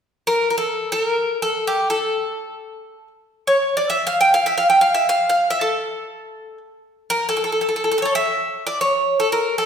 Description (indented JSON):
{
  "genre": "greek folk",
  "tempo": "free time",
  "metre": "none",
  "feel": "none",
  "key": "A phrygian dominant",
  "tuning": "A4 = 440 Hz",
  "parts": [
    { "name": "Greek bouzouki", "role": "solo", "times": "0.3-9.7 s", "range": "G4 to G5", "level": "-17 LUFS", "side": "equal", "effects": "none" }
  ],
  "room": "wet recital hall reverb, RT60 1.5 s",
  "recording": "recorded in a church or concert hall",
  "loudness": "-17 LUFS",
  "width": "side -7 dB against mid",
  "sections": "0.0-8.3 A section; 8.3-9.7 B section",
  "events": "none",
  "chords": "none"
}